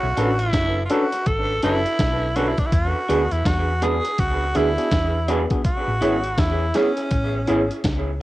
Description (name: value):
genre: lovers rock reggae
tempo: 82 BPM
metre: 4/4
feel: swing 62% on 16ths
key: unclear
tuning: A4 = 440 Hz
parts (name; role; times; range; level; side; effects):
- raspy tenor saxophone; melody; 0.0-7.8 s; C#4 to A4; -24 LUFS; right 1 dB; cassette tape, tape echo
- hollow-body short-scale fingered electric bass; bass; 0.0-8.2 s; F#1 to E2; -24 LUFS; equal; none
- barky tine electric piano; accompaniment; 0.2-7.8 s; B3 to A4; -28 LUFS; left 2 dB; cassette tape, tape echo
- electric guitar through a small old amp; stabs; 0.2-7.6 s; D4 to C#5; -24 LUFS; right 2 dB; cassette tape, tape echo
- dusty soul sampler-style drum kit; drums; 0.2-8.1 s; hi-hat, kick drum, snare drum; -23 LUFS; equal; cassette tape
room: moderate studio reverb, RT60 0.5 s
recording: home recording on cassette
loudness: -18 LUFS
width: side -16 dB against mid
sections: 0.0-8.2 A section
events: none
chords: 0.0 Bm7; 2.7 E7; 5.6 Amaj7